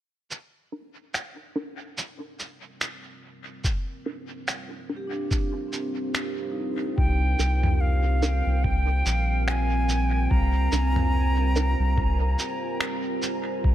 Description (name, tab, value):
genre	ambient dub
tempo	72 BPM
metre	4/4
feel	swing 57% on 16ths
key	C minor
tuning	A4 = 440 Hz
part	deep dark ambient pad	sustained chords	2.8-13.7 s	G3 to C5	-32 LUFS	right 2 dB	chorus, built-in reverb
part	lo-fi sampler-style drum kit	drums	0.3-13.4 s	finger snaps, shaker, toms	-31 LUFS	right 1 dB	dub echo
part	filtered dub chord stab	stabs	0.7-13.7 s	D4 to Bb4	-35 LUFS	right 2 dB	phaser, dub echo
part	electronic kick drum	drums	3.6-13.7 s	none	-25 LUFS	equal	none
part	vibraphone with soft mallets	arpeggios	5.0-8.3 s	C4 to G4	-33 LUFS	right 1 dB	dub echo
part	silver concert flute	melody	7.0-12.8 s	F5 to Bb5	-30 LUFS	equal	dub echo
part	round analog bass	bass	7.0-13.7 s	Bb1 to C2	-23 LUFS	equal	tube saturation
room	light reverb, digital ambience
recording	none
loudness	-23 LUFS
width	side -12 dB against mid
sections	0.3-7.0 A section; 7.0-13.7 B section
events	none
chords	0.3 Cm7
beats	| 0.31 1.14 1.98 2.81 | 3.64 4.48 5.31 6.14 | 6.98 7.81 8.64 9.48 | 10.31 11.14 11.98 12.81 | 13.64